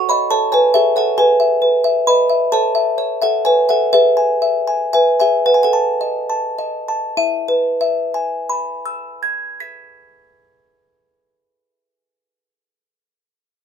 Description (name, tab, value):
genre	classical, lullaby for music box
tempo	34-46 BPM (dotted quarters)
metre	6/8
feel	rubato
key	E major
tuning	A4 = 440 Hz
part	music box	solo	0.0-12.1 s	E4 to B6	-14 LUFS	equal	none
room	light reverb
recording	minimal, uncompressed stereo recording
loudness	-14 LUFS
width	side -8 dB against mid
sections	0.0-7.2 A section; 7.2-10.6 B section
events	slowing down 0.0-7.2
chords	0.0 F#m; 1.2 E/G#; 2.5 A; 3.9 E; 5.5 B7; 7.2 E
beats	| 1.17 2.52 | 3.92 5.46 | 7.17 8.92